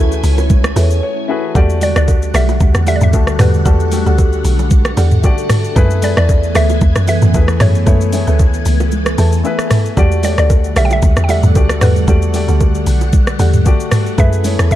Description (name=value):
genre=amapiano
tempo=114 BPM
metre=4/4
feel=swing 55% on 16ths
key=E dorian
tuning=A4 = 440 Hz
part: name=mallet-like synth pluck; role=melody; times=0.0-14.8 s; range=B4 to G5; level=-20 LUFS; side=equal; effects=chorus, tape echo
part: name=warm concert grand piano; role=accompaniment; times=0.0-14.8 s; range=A3 to A5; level=-22 LUFS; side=left 5 dB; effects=none
part: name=phased string machine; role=sustained chords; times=0.0-14.8 s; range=D3 to G#5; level=-21 LUFS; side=equal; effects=ensemble chorus, phaser, sidechain pumping
part: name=woody log drum bass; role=bass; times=0.0-14.8 s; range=B1 to F#2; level=-13 LUFS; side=equal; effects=none
part: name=smooth R&B drum kit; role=drums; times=0.1-14.8 s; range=hi-hat, kick drum, rim click, shaker, toms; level=-14 LUFS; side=equal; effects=none
part: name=bongos and congas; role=percussion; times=0.4-14.8 s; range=none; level=-25 LUFS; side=right 6 dB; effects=none
part: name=folk marimba with medium mallets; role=stabs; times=0.8-14.8 s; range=G4 to F#5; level=-25 LUFS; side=right 2 dB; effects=tape echo
room=little or no reverb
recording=dark, warm production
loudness=-10 LUFS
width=side -13 dB against mid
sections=0.0-1.6 A section; 1.6-14.8 B section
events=drop 0.0-1.6; grand piano fill 0.8-1.6, 8.9-10.0; break 1.0-1.6; kick muted 8.9-10.0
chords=0.0 F#m11; 1.6 Em11; 5.8 F#m11; 10.0 Em11; 14.2 F#m11